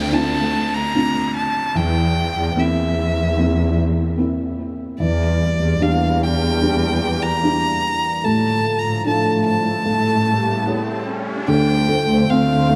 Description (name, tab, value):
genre	pop ballad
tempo	74 BPM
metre	4/4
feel	straight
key	D minor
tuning	A4 = 440 Hz
part	warm violin	melody	0.0-12.8 s	D5 to Bb5	-24 LUFS	equal	analog delay
part	felt-muted upright piano	accompaniment	0.0-12.8 s	D3 to C#5	-25 LUFS	equal	analog delay
part	muted chamber cello section	bass	0.0-12.8 s	D2 to A2	-22 LUFS	equal	none
part	downlifter and riser	sound effects	0.0-11.5 s	none	-34 LUFS	equal	none
part	sweeping resonant pad	sustained chords	5.0-12.8 s	C#3 to C5	-28 LUFS	equal	chorus
room	light reverb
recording	echo-heavy mix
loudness	-19 LUFS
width	mono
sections	0.0-11.5 A section; 11.5-12.8 B section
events	riser 9.6-11.5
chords	0.0 Dm7; 1.8 C7/E; 5.0 Em7b5; 8.2 Dm/A; 9.9 A7; 11.5 Dm7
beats	0.13 0.94 | 1.75 2.56 3.37 4.18 | 5.00 5.81 6.62 7.43 | 8.24 9.05 9.86 10.67 | 11.48 12.29